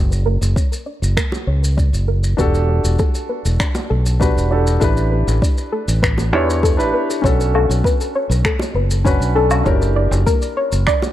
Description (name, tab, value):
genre	sunset chillout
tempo	99 BPM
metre	4/4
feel	straight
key	B minor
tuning	A4 = 440 Hz
part	soft round pluck	arpeggios	0.0-11.0 s	A4 to D5	-23 LUFS	left 2 dB	chorus, ping-pong delay
part	fingered electric bass	bass	0.0-10.8 s	E1 to E2	-16 LUFS	equal	none
part	shaker, finger snaps and woodblock	drums	0.1-11.1 s	none	-26 LUFS	equal	none
part	electronic kick drum	drums	0.6-11.0 s	none	-18 LUFS	equal	overdrive
part	bongos	percussion	1.3-11.1 s	none	-26 LUFS	right 1 dB	none
part	warm concert grand piano	accompaniment	2.4-11.1 s	C#4 to C#5	-21 LUFS	equal	auto-pan, ping-pong delay
room	light reverb, studio ambience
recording	dark, warm production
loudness	-14 LUFS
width	side -13 dB against mid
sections	0.0-11.1 A section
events	filter sweep on synth arpeggio sound 0.0-11.1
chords	0.0 F#; 2.4 Em11; 4.8 A9sus4; 7.2 Bm9; 9.7 F#7b9b13